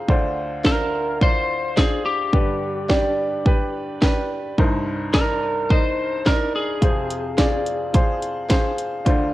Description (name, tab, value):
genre	piano-driven pop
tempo	107 BPM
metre	4/4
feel	straight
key	unclear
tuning	A4 = 440 Hz
part	bright upright piano	accompaniment	0.0-9.3 s	C2 to C6	-23 LUFS	equal	none
part	house drum kit	drums	0.1-9.2 s	hi-hat, kick drum, snare drum	-18 LUFS	equal	none
part	lightly driven lead guitar	melody	0.7-8.2 s	G4 to C5	-24 LUFS	left 1 dB	none
room	moderate plate reverb, RT60 1.4 s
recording	worn, warbling old tape, cassette tape, warbly pitch drift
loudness	-18 LUFS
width	side -16 dB against mid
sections	0.0-9.3 A section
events	none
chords	0.1 Dm7; 2.3 G; 4.6 Cm7; 6.8 Fm